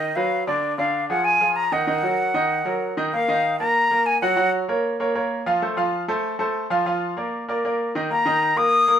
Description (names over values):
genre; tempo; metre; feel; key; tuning
latin; 193 BPM; 4/4; straight; Eb minor; A4 = 440 Hz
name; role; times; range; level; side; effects
breathy bright concert flute; melody; 0.0-4.5, 8.1-9.0 s; D5 to Eb6; -19 LUFS; left 2 dB; none
bright grand piano; accompaniment; 0.0-9.0 s; D3 to Gb5; -23 LUFS; right 1 dB; none
room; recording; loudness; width
wet studio ambience, RT60 0.5 s; band playing live in one room; -19 LUFS; side -9 dB against mid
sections
0.0-3.1 A section; 3.1-9.0 B section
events
none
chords
0.0 B; 0.6 Ddim; 1.9 Ebm; 4.4 Gb; 5.6 F; 6.9 Bb; 8.1 Bbsus4